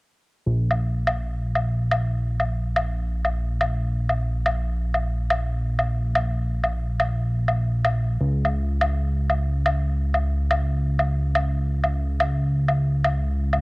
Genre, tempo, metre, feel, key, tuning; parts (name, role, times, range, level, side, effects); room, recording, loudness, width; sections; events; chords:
melodic techno; 124 BPM; 4/4; straight; Bb minor; A4 = 440 Hz
fat analog bass; bass; 0.5-13.6 s; Bb1 to Db2; -22 LUFS; equal
woodblock; drums; 0.7-13.6 s; -24 LUFS; left 1 dB; overdrive, cassette tape
digital ambience; home recording on cassette; -21 LUFS; side -26 dB against mid
0.5-13.6 A section